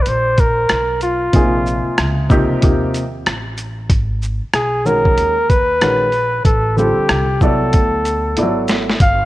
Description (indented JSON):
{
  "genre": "hip hop, jazz-hop",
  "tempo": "94 BPM",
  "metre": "4/4",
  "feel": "swing 64% on 16ths",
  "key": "unclear",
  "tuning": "A4 = 440 Hz",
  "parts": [
    { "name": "trumpet with bucket mute", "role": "melody", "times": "0.0-9.3 s", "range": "F4 to F5", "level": "-17 LUFS", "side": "equal", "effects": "analog delay" },
    { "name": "upright bass", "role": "bass", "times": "0.0-9.3 s", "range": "G1 to Eb2", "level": "-22 LUFS", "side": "equal", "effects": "none" },
    { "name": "boom bap sampler-style drum kit", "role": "drums", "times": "0.1-9.2 s", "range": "hi-hat, kick drum, rim click, shaker, snare drum", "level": "-16 LUFS", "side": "equal", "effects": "none" },
    { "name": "warm upright piano", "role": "accompaniment", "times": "1.3-8.9 s", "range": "C3 to D5", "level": "-18 LUFS", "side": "equal", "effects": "none" }
  ],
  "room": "light reverb, small room ambience",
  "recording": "worn, warbling old tape, cassette tape, warbly pitch drift",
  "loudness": "-13 LUFS",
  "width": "side -16 dB against mid",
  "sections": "0.0-9.3 A section",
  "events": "drum fill 8.4-9.0",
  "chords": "0.0 N.C.; 1.3 Bbm7; 2.6 Eb; 3.9 Abm7; 6.5 Am7; 7.7 D"
}